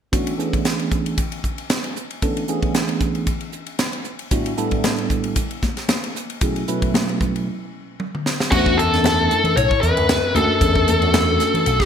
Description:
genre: electric jazz fusion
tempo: 114 BPM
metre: 4/4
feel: swing 54% on 16ths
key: E mixolydian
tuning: A4 = 439 Hz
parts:
  - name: tine electric piano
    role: accompaniment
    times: 0.1-11.8 s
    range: A2 to B4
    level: -24 LUFS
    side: right 3 dB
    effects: phaser
  - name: crisp fusion drum kit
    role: drums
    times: 0.1-11.9 s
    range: crash cymbal, hi-hat, kick drum, ride cymbal, snare drum, toms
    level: -22 LUFS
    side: equal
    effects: gated reverb
  - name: congas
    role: percussion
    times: 4.3-11.7 s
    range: none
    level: -27 LUFS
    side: left 4 dB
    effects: none
  - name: bluesy overdriven lead guitar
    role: melody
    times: 8.5-11.9 s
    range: F#4 to C#5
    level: -17 LUFS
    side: left 3 dB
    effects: distortion
  - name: dark bass clarinet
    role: second line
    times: 8.5-11.9 s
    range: D2 to A2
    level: -25 LUFS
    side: left 2 dB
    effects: none
  - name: slap bass with an envelope filter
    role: bass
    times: 8.5-11.8 s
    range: B1 to E3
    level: -21 LUFS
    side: equal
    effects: none
room: moderate plate reverb, RT60 1.8 s, small room ambience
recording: bright 1980s-style digital production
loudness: -17 LUFS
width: side -8 dB against mid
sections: 0.1-8.5 A section; 8.5-11.9 B section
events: break 7.5-8.5; drum fill 8.0-8.5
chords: 0.1 E7sus4; 4.3 A9sus4; 6.4 B9sus4; 8.5 E13sus4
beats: | 0.13 0.65 1.18 1.70 | 2.22 2.75 3.27 3.80 | 4.32 4.84 5.37 5.89 | 6.42 6.94 7.46 7.99 | 8.51 9.04 9.56 10.08 | 10.61 11.13 11.66

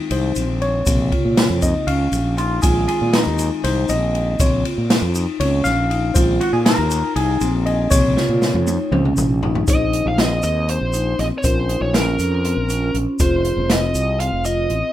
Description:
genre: progressive instrumental, band music in an uneven meter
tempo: 238 BPM (eighths)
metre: 7/8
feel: straight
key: Bb minor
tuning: A4 = 440 Hz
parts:
  - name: tine electric piano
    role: accompaniment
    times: 0.0-14.9 s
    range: C3 to F5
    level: -24 LUFS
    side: left 1 dB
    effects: overdrive, plate reverb
  - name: vibraphone with medium mallets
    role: arpeggios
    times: 0.0-14.9 s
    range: C4 to F4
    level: -23 LUFS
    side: left 1 dB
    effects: plate reverb, ping-pong delay
  - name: fretless electric bass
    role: bass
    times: 0.1-14.8 s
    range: F1 to Bb2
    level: -21 LUFS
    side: equal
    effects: none
  - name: open jazz drum kit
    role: drums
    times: 0.1-14.8 s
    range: hi-hat, kick drum, ride cymbal, snare drum, toms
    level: -21 LUFS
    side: equal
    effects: none
  - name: tube shaker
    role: percussion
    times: 0.4-14.7 s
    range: none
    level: -29 LUFS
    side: left 2 dB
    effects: none
  - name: clean electric guitar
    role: second line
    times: 2.4-3.5, 6.4-7.5 s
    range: Eb4 to Bb4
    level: -26 LUFS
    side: equal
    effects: harmonic tremolo, plate reverb, ping-pong delay
  - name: bluesy overdriven lead guitar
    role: melody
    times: 9.7-14.9 s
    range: Bb4 to F5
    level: -22 LUFS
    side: right 1 dB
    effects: distortion, plate reverb
room: light reverb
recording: rough home demo mix, faint mains hum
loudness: -16 LUFS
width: side -12 dB against mid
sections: 0.0-9.7 A section; 9.7-14.9 B section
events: tine electric piano solo 0.0-9.7; drum fill 8.2-9.7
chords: 0.0 Ab; 0.9 Bbmadd9; 2.6 Ab/Bb; 4.4 Bbmadd9; 6.2 Ab/Bb; 7.9 Bbmadd9; 9.7 Ab/Bb; 11.4 Bbmadd9; 13.2 Fm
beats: 0.11 0.36 0.61 | 0.87 1.12 1.37 1.62 1.88 2.13 2.38 | 2.63 2.88 3.14 3.39 3.64 3.89 4.14 | 4.39 4.65 4.90 5.15 5.40 5.65 5.90 | 6.16 6.41 6.66 6.91 7.16 7.41 7.66 | 7.92 8.17 8.42 8.67 8.92 9.17 9.42 | 9.68 9.93 10.18 10.43 10.68 10.93 11.19 | 11.44 11.69 11.94 12.19 12.44 12.69 12.95 | 13.20 13.45 13.70 13.95 14.20 14.45 14.70

